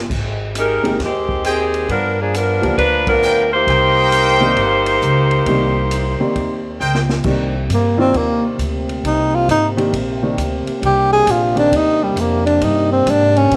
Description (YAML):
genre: jazz, big band swing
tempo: 134 BPM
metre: 4/4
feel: swing 66% on 8ths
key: C minor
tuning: A4 = 440 Hz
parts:
  - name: upright bass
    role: bass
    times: 0.0-13.6 s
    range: G1 to Bb2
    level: -23 LUFS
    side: equal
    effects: none
  - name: swinging big-band drum kit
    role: drums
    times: 0.1-13.6 s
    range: crash cymbal, hi-hat, kick drum, ride cymbal, snare drum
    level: -30 LUFS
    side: equal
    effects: none
  - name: dark saxophone section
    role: melody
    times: 0.6-6.8 s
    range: Eb3 to C5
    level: -18 LUFS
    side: equal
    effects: none
  - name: warm upright piano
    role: accompaniment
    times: 0.8-11.7 s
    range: Eb3 to D5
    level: -23 LUFS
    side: equal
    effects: none
  - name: brilliant trumpet section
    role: stabs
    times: 1.4-7.0 s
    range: Ab4 to G5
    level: -24 LUFS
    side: equal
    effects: none
  - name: clear trombone section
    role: sustained chords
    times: 7.3-13.6 s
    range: C3 to G4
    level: -25 LUFS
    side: equal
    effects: none
  - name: breathy tenor saxophone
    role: melody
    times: 7.7-13.6 s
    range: G3 to Ab4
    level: -17 LUFS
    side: equal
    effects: slapback echo
room: light reverb, small room reverb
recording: none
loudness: -16 LUFS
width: mono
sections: 0.0-7.3 A section; 7.3-13.6 B section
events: band accent 3.0; drum fill 6.8-7.3; tenor saxophone solo 7.3-13.6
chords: 0.1 Abmaj7; 1.9 G7#9; 3.7 Cm7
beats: | 0.10 0.55 0.99 1.44 | 1.89 2.33 2.78 3.23 | 3.68 4.12 4.57 5.02 | 5.46 5.91 6.36 6.80 | 7.25 7.70 8.15 8.59 | 9.04 9.49 9.94 10.38 | 10.83 11.28 11.73 12.17 | 12.62 13.07 13.52